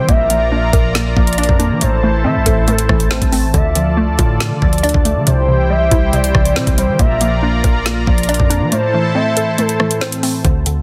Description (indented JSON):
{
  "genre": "hip hop, drill",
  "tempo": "139 BPM",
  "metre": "4/4",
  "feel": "half-time",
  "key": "unclear",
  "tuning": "A4 = 440 Hz",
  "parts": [
    { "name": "gliding portamento lead", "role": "second line", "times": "0.0-10.0 s", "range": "A4 to E5", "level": "-22 LUFS", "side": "equal", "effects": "chorus, phaser, digital delay" },
    { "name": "warbly lo-fi synth keys", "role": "accompaniment", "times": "0.0-10.5 s", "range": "A2 to D4", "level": "-23 LUFS", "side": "equal", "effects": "chorus, low-pass filter" },
    { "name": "warm analog pad", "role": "sustained chords", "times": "0.0-10.4 s", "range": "E4 to Bb5", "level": "-25 LUFS", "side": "equal", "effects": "chorus" },
    { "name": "hollow square pluck", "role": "arpeggios", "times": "0.0-10.8 s", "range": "C3 to D5", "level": "-23 LUFS", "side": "equal", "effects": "chorus, low-pass filter, digital delay" },
    { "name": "hard-hitting 808-style bass", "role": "bass", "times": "0.0-10.8 s", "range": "A1 to F3", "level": "-20 LUFS", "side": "equal", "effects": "none" },
    { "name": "drill drum kit", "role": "drums", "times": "0.1-10.8 s", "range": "hi-hat, kick drum, rim click, snare drum", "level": "-18 LUFS", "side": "equal", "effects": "none" }
  ],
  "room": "light reverb",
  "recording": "dense, heavily limited modern master",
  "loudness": "-14 LUFS",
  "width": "mono",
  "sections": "0.0-10.4 A section",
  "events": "kick muted 8.7-10.4",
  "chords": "0.1 Bb; 1.8 Am; 3.5 Dm; 5.3 C; 7.0 Bb; 8.7 Am",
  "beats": "| 0.09 0.52 0.95 1.38 | 1.81 2.25 2.68 3.11 | 3.54 3.97 4.40 4.83 | 5.27 5.70 6.13 6.56 | 6.99 7.42 7.86 8.29 | 8.72 9.15 9.58 10.02 | 10.45"
}